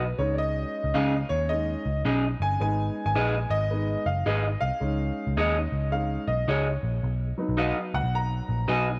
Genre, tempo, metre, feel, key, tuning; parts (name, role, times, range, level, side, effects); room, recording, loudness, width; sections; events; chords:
soul; 108 BPM; 4/4; swing 64% on 8ths; Db mixolydian; A4 = 440 Hz
warm upright piano; accompaniment; 0.0-9.0 s; Gb3 to Bb5; -31 LUFS; equal
electric guitar through a small old amp; stabs; 0.0-8.9 s; Db4 to Eb5; -32 LUFS; equal
vintage muted picked electric bass; bass; 0.0-9.0 s; Gb1 to Eb2; -30 LUFS; equal
light reverb, small room reverb; -27 LUFS; mono
0.0-9.0 A section
upright piano solo 0.0-9.0
0.1 Dbsus2; 2.6 Abm; 4.8 Dbsus2; 7.0 Cb